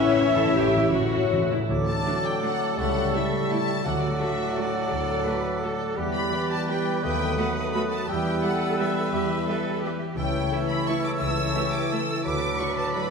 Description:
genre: classical, orchestral ballroom waltz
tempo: 151-186 BPM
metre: 3/4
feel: rubato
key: D major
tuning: A4 = 441 Hz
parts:
  - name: warm studio violin section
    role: melody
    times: 0.0-13.1 s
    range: D5 to E6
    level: -32 LUFS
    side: left 3 dB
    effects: none
  - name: bright silver concert flute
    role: second line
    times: 0.0-13.1 s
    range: E5 to E6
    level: -34 LUFS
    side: left 1 dB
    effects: none
  - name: warm oboe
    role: second line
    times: 0.0-13.1 s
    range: A4 to E5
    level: -36 LUFS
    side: right 3 dB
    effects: none
  - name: warm studio violin section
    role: second line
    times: 0.0-13.0 s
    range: F#4 to E5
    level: -41 LUFS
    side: left 2 dB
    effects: none
  - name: rich studio viola section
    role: accompaniment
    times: 0.0-13.0 s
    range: F#3 to A4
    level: -32 LUFS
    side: right 2 dB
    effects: none
  - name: bright trombone section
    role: sustained chords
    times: 0.0-13.1 s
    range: A2 to G3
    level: -34 LUFS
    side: right 4 dB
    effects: none
  - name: mellow French horn section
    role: sustained chords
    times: 0.0-13.1 s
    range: A3 to A4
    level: -32 LUFS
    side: left 4 dB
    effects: none
  - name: concert harp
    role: arpeggios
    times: 0.0-13.1 s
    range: A2 to E5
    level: -30 LUFS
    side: left 8 dB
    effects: none
  - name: bright trumpet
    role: stabs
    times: 0.0-13.1 s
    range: B4 to F#5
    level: -34 LUFS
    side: right 2 dB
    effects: none
  - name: warm studio cello section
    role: bass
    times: 0.0-13.1 s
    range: E4 to B4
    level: -34 LUFS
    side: right 4 dB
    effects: none
  - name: timpani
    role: percussion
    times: 0.0-4.4 s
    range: A2 to D3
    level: -30 LUFS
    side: equal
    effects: none
  - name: rich studio double bass section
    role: bass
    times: 0.5-12.5 s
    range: A1 to E2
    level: -35 LUFS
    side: right 4 dB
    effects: none
  - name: warm bassoon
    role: accompaniment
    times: 1.7-13.1 s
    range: E3 to A3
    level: -32 LUFS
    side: right 4 dB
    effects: none
room: wet concert hall reverb, RT60 2.1 s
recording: minimal, uncompressed stereo recording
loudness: -22 LUFS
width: side -5 dB against mid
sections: 0.0-1.7 A section; 1.7-13.1 B section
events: timpani fill 0.0-1.7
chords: 0.0 A; 1.7 D; 2.8 A7/C#; 3.8 D; 6.0 Em7; 7.0 B7/D#; 8.1 Em; 10.2 A7/C#; 12.2 D

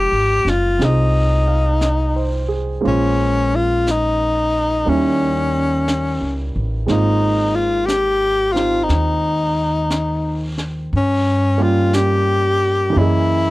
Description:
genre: jazz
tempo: 59 BPM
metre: 4/4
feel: swing 66% on 8ths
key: unclear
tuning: A4 = 440 Hz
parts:
  - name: breathy tenor saxophone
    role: melody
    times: 0.0-13.5 s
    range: Db4 to G4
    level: -18 LUFS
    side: left 2 dB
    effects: none
  - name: warm grand piano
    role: accompaniment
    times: 0.0-13.5 s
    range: Fb3 to F5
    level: -23 LUFS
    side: right 4 dB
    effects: none
  - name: upright bass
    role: bass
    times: 0.0-13.5 s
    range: Gb1 to G2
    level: -20 LUFS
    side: equal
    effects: none
  - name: jazz brush drum kit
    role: drums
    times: 0.5-13.5 s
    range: brushed snare drum, hi-hat, snare drum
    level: -29 LUFS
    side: equal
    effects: none
room: light reverb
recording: dry, close 1970s-style studio recording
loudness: -15 LUFS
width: side -18 dB against mid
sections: 0.0-13.5 A section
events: none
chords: 0.0 Fm7; 2.8 Bbm7; 4.9 Eb7b9; 6.9 Ab69; 10.9 Gm7b5; 13.0 Gb13

